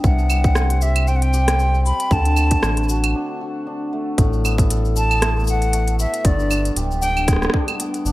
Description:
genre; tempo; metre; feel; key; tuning
folktronica; 116 BPM; 4/4; swing 56% on 16ths; A dorian; A4 = 440 Hz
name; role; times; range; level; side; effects
bright silver concert flute; melody; 0.0-7.5 s; D5 to B5; -24 LUFS; left 1 dB; tape echo
hammered dulcimer; arpeggios; 0.0-8.1 s; G2 to A4; -24 LUFS; left 1 dB; none
round analog bass; bass; 0.0-8.1 s; D1 to D2; -19 LUFS; equal; none
electronic kick drum; drums; 0.0-7.7 s; none; -18 LUFS; equal; overdrive
organic electronic drum kit; drums; 0.0-8.1 s; cabasa, claves, hi-hat, rim click; -24 LUFS; right 1 dB; overdrive
room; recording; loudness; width
little or no reverb; none; -16 LUFS; side -17 dB against mid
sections
0.0-4.2 A section; 4.2-8.1 B section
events
break 3.1-4.2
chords
0.0 C5; 2.1 D; 4.2 Asus2; 6.2 G

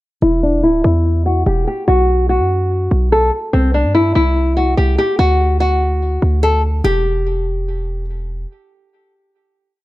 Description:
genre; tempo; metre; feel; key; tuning
hip hop, trap; 145 BPM; 4/4; half-time; E minor; A4 = 440 Hz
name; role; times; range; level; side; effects
nylon-string guitar; melody; 0.2-8.0 s; C4 to A4; -15 LUFS; left 1 dB; low-pass filter
hard-hitting 808-style bass; bass; 0.2-8.5 s; D1 to G2; -16 LUFS; equal; none
room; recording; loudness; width
light reverb, small room ambience; none; -13 LUFS; side -17 dB against mid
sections
0.2-6.8 breakdown; 6.8-9.8 final chord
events
filter sweep on nylon-string guitar 0.2-6.8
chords
0.2 N.C.; 1.9 B5; 3.5 C; 5.2 D; 6.8 Em

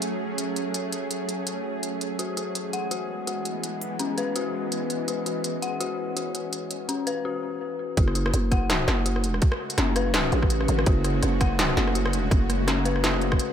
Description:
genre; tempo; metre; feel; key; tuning
half-time drum and bass; 166 BPM; 4/4; swing 57% on 16ths, half-time; F# minor; A4 = 440 Hz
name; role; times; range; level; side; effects
bowed-like drone; sustained chords; 0.0-13.5 s; C#3 to G#4; -30 LUFS; right 1 dB; built-in reverb, sidechain pumping
industrial drum kit; drums; 0.0-13.5 s; hi-hat, rim click, snare drum; -28 LUFS; equal; none
dark detuned synth bell; arpeggios; 2.2-13.5 s; C#4 to F#5; -30 LUFS; left 6 dB; chorus, tape echo
growling 808-style bass; bass; 8.0-13.4 s; F#1 to A1; -25 LUFS; equal; none
electronic kick drum; drums; 8.0-13.4 s; none; -22 LUFS; equal; overdrive
room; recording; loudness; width
light reverb; none; -23 LUFS; side -9 dB against mid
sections
0.0-8.0 A section; 8.0-13.5 B section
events
drop 8.0-13.5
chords
0.0 F#madd9; 2.2 E; 8.0 F#madd9

